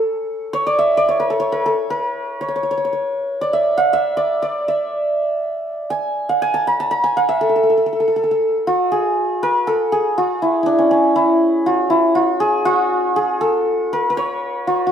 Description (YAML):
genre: persian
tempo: 80 BPM (dotted quarters)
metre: 6/8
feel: straight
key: unclear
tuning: A4 = 441 Hz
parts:
  - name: santur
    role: solo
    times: 0.0-14.9 s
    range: C#4 to Bb5+45c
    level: -16 LUFS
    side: equal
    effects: none
room: moderate stone room reverb, RT60 1.1 s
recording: band playing live in one room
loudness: -16 LUFS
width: side -8 dB against mid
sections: 0.0-9.7 A section; 9.7-14.9 B section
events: none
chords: none